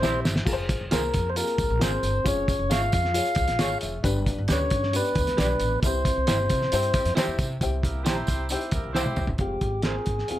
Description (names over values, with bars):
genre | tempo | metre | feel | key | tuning
uptempo 1960s-style soul | 134 BPM | 4/4 | straight | F harmonic minor | A4 = 440 Hz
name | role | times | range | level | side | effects
tonewheel organ | melody | 0.0-10.4 s | G4 to F5 | -27 LUFS | left 1 dB | stopped rotary speaker, plate reverb
dark horn section | second line | 0.0-0.3, 6.7-9.3 s | G3 to C5 | -33 LUFS | right 2 dB | plate reverb
vibraphone with soft mallets | second line | 0.0-7.1 s | Bb3 to F4 | -36 LUFS | right 2 dB | plate reverb
dark upright piano | accompaniment | 0.0-10.4 s | G2 to Db6 | -32 LUFS | left 4 dB | plate reverb
electric guitar through a small old amp | stabs | 0.0-9.9 s | E4 to D5 | -35 LUFS | right 6 dB | spring reverb, plate reverb
upright bass | bass | 0.0-10.4 s | F1 to C3 | -29 LUFS | equal | none
cloth-damped thuddy drum kit | drums | 0.0-10.4 s | crash cymbal, hi-hat, kick drum, snare drum, toms | -27 LUFS | equal | none
tambourine | percussion | 0.0-9.3 s | none | -38 LUFS | right 4 dB | none
room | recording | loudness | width
light reverb | none | -22 LUFS | side -13 dB against mid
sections
0.0-7.6 A section; 7.6-9.4 B section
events
band accent 0.0-0.5, 5.8-7.6; drum fill 0.0-0.5, 9.0-9.4; upright piano fill 3.4-4.0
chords
0.5 Fm; 2.2 Db/F; 4.0 G; 5.8 C; 9.4 Fm